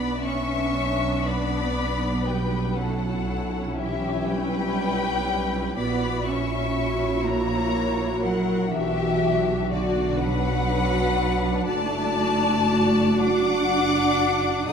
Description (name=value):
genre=classical, slow romantic movement for string orchestra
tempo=40 BPM (dotted quarters)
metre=6/8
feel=rubato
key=B minor, D major from 11.7 s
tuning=A4 = 440 Hz
part: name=rich studio violin section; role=melody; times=0.0-14.7 s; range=D5 to D#6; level=-28 LUFS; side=left 5 dB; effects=none
part: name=bright studio violin section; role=second line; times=0.0-14.7 s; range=F#4 to F#5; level=-29 LUFS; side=left 4 dB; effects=none
part: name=dark studio viola section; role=accompaniment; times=0.0-14.7 s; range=B3 to A4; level=-28 LUFS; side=equal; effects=none
part: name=rich studio cello section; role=bass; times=0.0-14.7 s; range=D3 to D#4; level=-27 LUFS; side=right 2 dB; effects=none
part: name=warm studio double bass section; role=bass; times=0.0-14.7 s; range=F#1 to B1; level=-29 LUFS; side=right 2 dB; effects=none
room=wet scoring stage reverb, RT60 1.6 s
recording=dark, warm production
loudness=-21 LUFS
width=side -7 dB against mid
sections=0.0-14.7 A section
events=none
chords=0.0 Bm; 2.8 C#m7b5/B; 5.8 F#7/A#; 8.7 Bm; 11.7 D/F#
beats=1.27 | 2.77 4.29 | 5.78 7.26 | 8.72 10.20 | 11.66 13.22 | 14.69